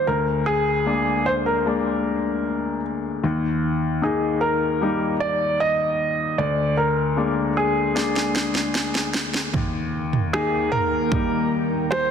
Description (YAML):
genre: pop ballad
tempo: 76 BPM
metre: 4/4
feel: straight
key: Eb major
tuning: A4 = 440 Hz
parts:
  - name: warm grand piano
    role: melody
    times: 0.0-12.1 s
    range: Ab4 to Eb5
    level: -23 LUFS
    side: right 1 dB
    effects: ping-pong delay
  - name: bright upright piano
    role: accompaniment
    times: 0.0-12.1 s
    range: D2 to Eb4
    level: -24 LUFS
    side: left 3 dB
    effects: none
  - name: house drum kit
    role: drums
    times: 8.0-12.1 s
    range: kick drum, rim click, snare drum, toms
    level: -24 LUFS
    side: right 2 dB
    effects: overdrive
  - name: ethereal airy pad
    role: sustained chords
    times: 10.0-12.1 s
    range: Eb2 to G5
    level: -27 LUFS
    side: right 1 dB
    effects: ensemble chorus, built-in reverb
room: moderate concert hall reverb, RT60 2.0 s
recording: dense, heavily limited modern master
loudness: -20 LUFS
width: side -7 dB against mid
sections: 0.0-12.1 A section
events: drum fill 8.0-9.5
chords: 0.1 Bb7/D; 3.2 Eb; 6.4 Bb7/D; 9.5 Eb